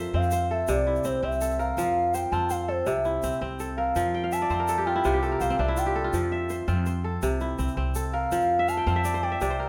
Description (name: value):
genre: west african traditional, West African string and xylophone music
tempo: 110 BPM (dotted quarters)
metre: 12/8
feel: straight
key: F major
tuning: A4 = 440 Hz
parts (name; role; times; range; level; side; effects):
- kora; arpeggios; 0.0-9.7 s; C3 to G5; -30 LUFS; equal; none
- upright bass; bass; 0.0-9.7 s; C2 to F2; -33 LUFS; equal; none
- tube shaker; percussion; 0.0-9.5 s; none; -46 LUFS; equal; none
- pure breathy sine lead; melody; 0.1-9.7 s; C5 to A5; -29 LUFS; equal; chorus
room: moderate recital hall reverb, RT60 1.6 s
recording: none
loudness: -26 LUFS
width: mono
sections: 0.0-9.7 A section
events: soft synth lead solo 0.0-9.7; kora fill 4.1-6.1, 8.6-9.7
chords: 0.0 F; 0.7 C; 1.8 F; 2.9 C; 4.0 F; 5.0 C5; 6.1 F; 7.2 C; 8.3 F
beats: 0.14 0.68 1.23 | 1.77 2.32 2.86 3.41 | 3.95 4.50 5.04 5.59 | 6.13 6.68 7.22 7.77 | 8.31 8.86 9.41